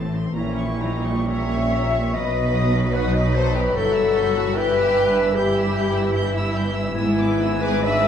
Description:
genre	classical, slow romantic movement for symphony orchestra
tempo	62-79 BPM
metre	4/4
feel	rubato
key	E minor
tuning	A4 = 440 Hz
part	rich studio violin section	melody	0.0-8.1 s	A5 to G6	-35 LUFS	right 2 dB	none
part	warm oboe	second line	0.0-8.1 s	G#5 to C#6	-33 LUFS	right 1 dB	none
part	rich studio viola section	accompaniment	0.0-8.1 s	B3 to F#4	-31 LUFS	equal	none
part	warm bassoon	accompaniment	0.0-8.1 s	E3 to G#3	-31 LUFS	equal	none
part	concert harp	arpeggios	0.0-8.1 s	G2 to C#6	-32 LUFS	left 6 dB	none
part	dark studio double bass section	bass	0.0-8.1 s	G1 to B1	-25 LUFS	right 1 dB	none
part	rich studio cello section	bass	0.0-8.1 s	G2 to B2	-26 LUFS	right 2 dB	none
part	rich studio violin section	second line	0.3-8.1 s	B3 to C#5	-31 LUFS	left 2 dB	none
part	warm French horn section	sustained chords	0.3-8.1 s	E4 to E5	-24 LUFS	left 3 dB	none
part	hollow flute section	second line	0.4-8.1 s	E4 to E5	-30 LUFS	equal	none
part	warm clarinet	second line	0.4-8.1 s	E4 to E5	-29 LUFS	left 2 dB	none
room	wet scoring stage reverb, RT60 1.9 s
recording	dark, warm production, vinyl crackle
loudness	-18 LUFS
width	side -8 dB against mid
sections	0.0-8.1 A section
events	none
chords	0.4 A#dim7; 2.1 B; 3.8 Em/G; 7.0 E7/G#

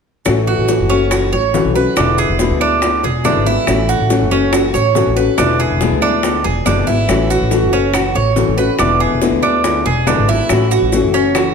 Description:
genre	latin, Cuban son and guajira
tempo	141 BPM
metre	4/4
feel	straight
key	A major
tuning	A4 = 442 Hz
part	nylon-string guitar	accompaniment	0.3-11.5 s	B2 to F#4	-16 LUFS	left 5 dB	none
part	upright bass	bass	0.3-11.5 s	E1 to D2	-18 LUFS	right 1 dB	none
part	bongos	percussion	0.3-11.5 s	none	-22 LUFS	left 4 dB	none
part	claves	percussion	0.3-11.5 s	none	-28 LUFS	right 7 dB	none
part	maracas	percussion	0.3-11.5 s	none	-31 LUFS	right 8 dB	none
part	Cuban tres	arpeggios	0.5-11.5 s	C#4 to C#5	-17 LUFS	right 6 dB	none
room	wet large studio reverb, RT60 1.4 s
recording	none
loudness	-12 LUFS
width	side -6 dB against mid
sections	0.3-11.5 A section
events	none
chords	0.3 A6; 2.0 E7; 3.7 A6; 5.4 E7; 7.1 A6; 8.8 E7; 10.5 A6

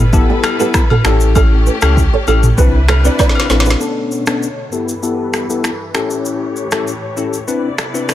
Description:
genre	afrobeats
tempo	98 BPM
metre	4/4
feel	straight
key	unclear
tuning	A4 = 440 Hz
part	bell-like tine electric piano	accompaniment	0.0-8.1 s	B3 to B4	-18 LUFS	left 4 dB	analog chorus, low-pass filter
part	clear studio string section	sustained chords	0.0-8.1 s	G2 to D5	-24 LUFS	left 1 dB	low-pass filter
part	sub bass with octave	bass	0.0-3.8 s	G1 to C#2	-13 LUFS	equal	none
part	afro-pop drum kit	drums	0.1-8.1 s	finger snaps, kick drum, rim click, shaker, snare drum, toms	-16 LUFS	equal	none
part	flamenco guitar	riff	0.3-3.8 s	E4 to D5	-20 LUFS	right 8 dB	low-pass filter, tape echo
part	agogo bells and woodblock	percussion	0.4-3.5 s	none	-23 LUFS	left 6 dB	none
room	digital ambience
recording	none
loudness	-12 LUFS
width	side -12 dB against mid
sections	0.0-3.8 A section; 3.8-8.1 B section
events	drum fill 3.2-3.8; filter sweep 3.8-8.1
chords	0.0 G69; 1.1 A7; 2.6 Cmaj9; 3.8 Bm9; 4.7 G69; 5.9 A7; 7.5 Cmaj9

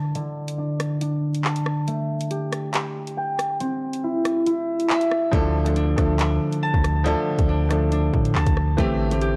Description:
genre	hip hop, drill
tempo	139 BPM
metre	4/4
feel	half-time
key	D minor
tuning	A4 = 444 Hz
part	concert harp	arpeggios	0.0-9.4 s	D3 to A5	-26 LUFS	equal	low-pass filter, analog delay
part	drill drum kit	drums	0.2-9.3 s	handclaps, hi-hat, kick drum, rim click	-28 LUFS	equal	none
part	felt-muted upright piano	accompaniment	5.3-9.4 s	E3 to A4	-27 LUFS	equal	low-pass filter
part	long sustained 808-style bass	bass	5.3-9.4 s	A1 to A2	-25 LUFS	equal	none
room	digital ambience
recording	dry, gritty hardware recording, cassette tape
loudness	-23 LUFS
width	mono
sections	0.0-9.4 A section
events	break 0.0-5.3; filter sweep 0.0-5.3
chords	0.0 D5; 1.9 Gsus2/A; 3.6 C; 5.3 Dm; 8.8 Am7

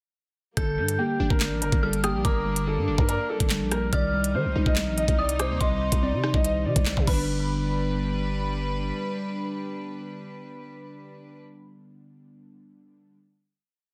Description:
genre	hip hop, drill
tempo	143 BPM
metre	4/4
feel	half-time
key	G minor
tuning	A4 = 440 Hz
part	dark grand piano	melody	0.6-8.5 s	G4 to Eb5	-32 LUFS	equal	low-pass filter, digital delay
part	dark detuned synth bell	second line	0.6-8.5 s	B5 to G6	-37 LUFS	equal	chorus, digital delay
part	glassy digital keys	accompaniment	0.6-13.2 s	D3 to Eb5	-35 LUFS	equal	chorus, low-pass filter
part	warm studio string section	sustained chords	0.6-11.4 s	C3 to B4	-37 LUFS	equal	none
part	growling 808-style bass	bass	0.6-8.9 s	G1 to Eb3	-31 LUFS	equal	none
part	drill drum kit	drums	0.6-7.2 s	crash cymbal, handclaps, hi-hat, kick drum, rim click, snare drum	-28 LUFS	equal	none
room	light reverb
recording	dense, heavily limited modern master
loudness	-25 LUFS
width	mono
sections	0.6-7.3 hook; 7.3-10.6 final hit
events	none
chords	0.6 Gm; 3.9 Cm; 7.1 G

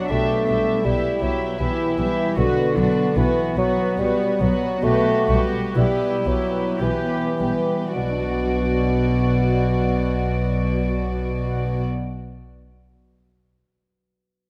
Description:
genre	classical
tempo	48-81 BPM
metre	3/4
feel	rubato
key	B minor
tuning	A4 = 440 Hz
part	warm studio violin section	melody	0.0-11.8 s	B4 to E5	-34 LUFS	equal	none
part	warm symphonic violin section	second line	0.0-11.8 s	F#4 to G4	-34 LUFS	equal	none
part	dark bassoon	accompaniment	0.0-11.8 s	B2 to A3	-25 LUFS	equal	none
part	dark symphonic viola section	accompaniment	0.0-11.8 s	F#3 to B3	-32 LUFS	equal	none
part	concert harp	arpeggios	0.0-12.7 s	B2 to F#5	-31 LUFS	equal	none
part	warm symphonic cello section	bass	0.0-11.8 s	B2 to G4	-30 LUFS	equal	none
part	warm symphonic double bass section	bass	0.1-11.8 s	B1	-27 LUFS	equal	none
room	moderate concert hall reverb, RT60 1.9 s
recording	none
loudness	-21 LUFS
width	mono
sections	0.0-8.0 A section; 8.0-11.1 B section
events	slowing down 1.2-8.0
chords	0.1 Em/B; 2.4 Bm; 4.8 Em/B; 8.0 Bm

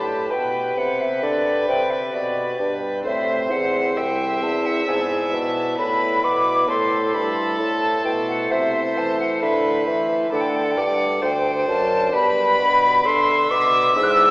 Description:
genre	classical, baroque-style sonata movement with continuo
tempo	66 BPM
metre	4/4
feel	straight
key	G major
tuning	A4 = 441 Hz
part	silver concert flute	melody	0.0-14.3 s	D5 to F#6	-21 LUFS	left 1 dB	none
part	dark violin	second line	0.0-14.3 s	G4 to E5	-25 LUFS	right 1 dB	none
part	pipe organ, principal chorus	accompaniment	0.0-14.3 s	C2 to D5	-27 LUFS	equal	none
part	mellow bassoon	bass	0.0-14.3 s	C2 to E3	-23 LUFS	equal	none
room	wet church reverb, RT60 2.8 s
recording	recorded in a church or concert hall, small speaker sound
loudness	-18 LUFS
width	side -22 dB against mid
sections	0.0-14.3 A section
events	none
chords	0.0 G; 3.0 Am; 4.9 E7/G#; 6.7 Am; 10.3 D; 12.1 G

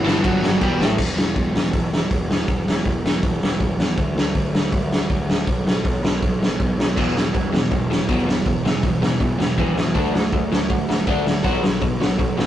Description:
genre	punk rock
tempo	161 BPM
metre	4/4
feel	straight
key	E minor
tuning	A4 = 440 Hz
part	bluesy overdriven lead guitar	melody	0.0-0.9 s	E3 to G4	-22 LUFS	equal	distortion
part	overdriven electric guitar	riff	0.0-1.0, 7.0-12.5 s	E2 to D4	-23 LUFS	equal	none
part	fuzz picked electric bass	bass	0.0-12.5 s	E1 to E2	-24 LUFS	equal	overdrive
part	raw garage drum kit	drums	0.1-12.5 s	crash cymbal, hi-hat, kick drum, ride cymbal, snare drum	-20 LUFS	equal	none
room	light reverb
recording	rough rehearsal-room recording, tube saturation, nothing above 10.3 kHz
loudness	-18 LUFS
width	side -12 dB against mid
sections	1.0-12.5 A section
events	none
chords	0.1 G5; 0.6 Em; 1.0 N.C.; 7.0 E5; 9.9 D5; 11.4 B5

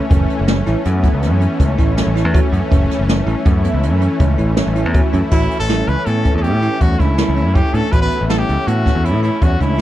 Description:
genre	progressive instrumental, band music in an uneven meter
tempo	161 BPM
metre	7/4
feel	straight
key	A mixolydian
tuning	A4 = 439 Hz
part	lush unison pad	accompaniment	0.0-9.8 s	E3 to E4	-21 LUFS	left 2 dB	chorus
part	bell-like tine electric piano	arpeggios	0.0-9.8 s	B3 to F#4	-24 LUFS	right 5 dB	medium stereo tremolo
part	modern bright picked electric bass	bass	0.1-9.8 s	F#1 to A2	-17 LUFS	equal	none
part	jazz brush drum kit	drums	0.1-9.7 s	crash cymbal, hi-hat, kick drum, snare drum	-17 LUFS	equal	none
part	brilliant trumpet	melody	5.3-9.8 s	E4 to B4	-21 LUFS	equal	none
room	little or no reverb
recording	none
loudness	-13 LUFS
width	side -14 dB against mid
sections	0.0-5.3 A section; 5.3-9.8 B section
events	none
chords	0.1 F#m; 5.3 Aadd9

